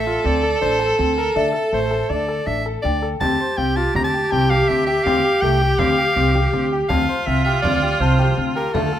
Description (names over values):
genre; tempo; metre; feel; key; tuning
contemporary instrumental, chamber music in an uneven meter; 162 BPM; 5/4; straight; unclear; A4 = 441 Hz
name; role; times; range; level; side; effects
bright soprano saxophone; melody; 0.0-9.0 s; A4 to Bb5; -23 LUFS; equal; none
clear viola; second line; 0.0-9.0 s; F4 to A4; -21 LUFS; right 2 dB; none
upright bass; bass; 0.0-8.9 s; A1 to D2; -22 LUFS; right 2 dB; none
clear concert grand piano; arpeggios; 0.1-9.0 s; A3 to C5; -24 LUFS; left 5 dB; none
celesta; texture; 1.4-8.8 s; E5 to A5; -30 LUFS; left 4 dB; none
frame drum; percussion; 3.2-8.9 s; none; -29 LUFS; right 2 dB; none
room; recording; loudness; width
light reverb; close, detailed microphones; -16 LUFS; side -10 dB against mid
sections
0.0-9.0 A section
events
none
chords
0.0 D5; 3.2 Fsus2